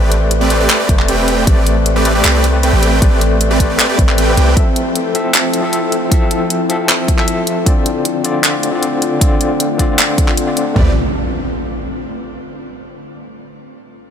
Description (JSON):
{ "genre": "future bass", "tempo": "155 BPM", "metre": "4/4", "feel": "half-time", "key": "A minor", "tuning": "A4 = 440 Hz", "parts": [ { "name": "overdriven tine electric piano", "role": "accompaniment", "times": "0.0-10.9 s", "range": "D3 to E5", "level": "-19 LUFS", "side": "left 3 dB", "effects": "fast tremolo, sidechain pumping, ping-pong delay" }, { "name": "ethereal airy pad", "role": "sustained chords", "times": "0.1-10.9 s", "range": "D3 to A4", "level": "-21 LUFS", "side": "left 1 dB", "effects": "ensemble chorus, built-in reverb, sidechain pumping" }, { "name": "supersaw chords", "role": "riff", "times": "0.0-4.5, 10.8-10.9 s", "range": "A3 to G5", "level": "-18 LUFS", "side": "right 2 dB", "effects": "sidechain pumping, ping-pong delay" }, { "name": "warm 808-style bass", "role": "bass", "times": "0.0-4.6, 10.8-10.9 s", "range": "E1 to C2", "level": "-15 LUFS", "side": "equal", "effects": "sidechain pumping" }, { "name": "pop drum kit", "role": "drums", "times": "0.1-10.6 s", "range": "handclaps, hi-hat", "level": "-18 LUFS", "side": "equal", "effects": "none" }, { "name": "pop drum kit", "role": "drums", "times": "0.9-10.9 s", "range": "kick drum, toms", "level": "-14 LUFS", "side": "equal", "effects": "none" }, { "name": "impact", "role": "sound effects", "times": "10.8-12.3 s", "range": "none", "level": "-22 LUFS", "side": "right 1 dB", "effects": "none" } ], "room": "light reverb", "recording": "none", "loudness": "-11 LUFS", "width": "side -8 dB against mid", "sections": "0.0-10.8 A section; 10.8-12.3 B section", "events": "filter sweep on ambient pad 0.0-10.8", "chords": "0.0 Am11; 4.6 Fmaj7; 7.7 Dm7; 10.8 Am11" }